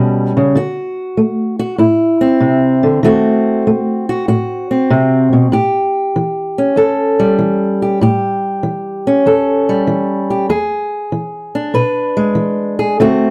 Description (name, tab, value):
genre	blues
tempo	96 BPM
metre	4/4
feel	swing 68% on 8ths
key	unclear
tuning	A4 = 440 Hz
part	fingerpicked old ladder-braced acoustic guitar	solo	0.0-13.3 s	E2 to B4	-14 LUFS	equal	none
room	moderate studio reverb, RT60 0.6 s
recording	dark, warm production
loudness	-14 LUFS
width	mono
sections	0.0-13.3 A section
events	none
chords	0.0 A7; 0.6 D7; 3.0 D#dim7; 5.5 A7; 10.5 E7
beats	| 0.56 1.18 1.80 2.42 | 3.04 3.66 4.28 4.90 | 5.53 6.15 6.77 7.39 | 8.01 8.63 9.26 9.88 | 10.50 11.12 11.74 12.37 | 12.99